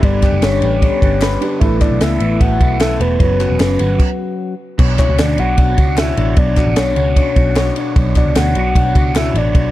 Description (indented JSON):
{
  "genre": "jangly indie pop",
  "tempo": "151 BPM",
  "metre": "4/4",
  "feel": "straight",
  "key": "B minor",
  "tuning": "A4 = 442 Hz",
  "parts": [
    { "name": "soft octave-layered synth lead", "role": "melody", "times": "0.0-9.7 s", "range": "B4 to F#5", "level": "-20 LUFS", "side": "left 1 dB", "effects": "chorus" },
    { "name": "crunchy overdriven guitar", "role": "accompaniment", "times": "0.0-9.7 s", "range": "B2 to C#5", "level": "-24 LUFS", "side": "right 6 dB", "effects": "phaser" },
    { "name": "dark upright piano", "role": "accompaniment", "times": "0.0-4.0 s", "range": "C#4 to B4", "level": "-26 LUFS", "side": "right 7 dB", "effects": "none" },
    { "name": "phased analog pad", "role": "sustained chords", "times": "0.0-4.0 s", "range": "C#3 to A4", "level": "-28 LUFS", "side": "equal", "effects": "none" },
    { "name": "direct-recorded clean electric guitar", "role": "arpeggios", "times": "0.0-9.7 s", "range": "B2 to C#5", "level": "-21 LUFS", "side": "left 6 dB", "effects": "none" },
    { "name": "vintage muted picked electric bass", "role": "bass", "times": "0.0-9.7 s", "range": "E1 to D2", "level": "-17 LUFS", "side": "equal", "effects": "none" },
    { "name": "compact cocktail drum kit", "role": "drums", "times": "0.0-9.6 s", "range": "crash cymbal, kick drum, ride cymbal, snare drum", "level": "-15 LUFS", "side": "equal", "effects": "none" },
    { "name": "group handclap", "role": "percussion", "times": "0.2-9.2 s", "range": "none", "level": "-32 LUFS", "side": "left 5 dB", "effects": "none" }
  ],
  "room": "little or no reverb",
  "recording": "dark, warm production",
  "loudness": "-12 LUFS",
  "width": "side -15 dB against mid",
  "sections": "0.0-4.8 A section; 4.8-9.7 A section",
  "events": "stop 4.0-4.8",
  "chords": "0.0 G; 1.6 Asus2; 3.2 F#sus4; 4.8 Bmadd9",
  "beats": "| 0.03 0.43 0.82 1.22 | 1.62 2.01 2.41 2.81 | 3.20 3.60 4.00 4.39 | 4.79 5.18 5.58 5.97 | 6.37 6.77 7.16 7.56 | 7.96 8.35 8.75 9.14 | 9.54"
}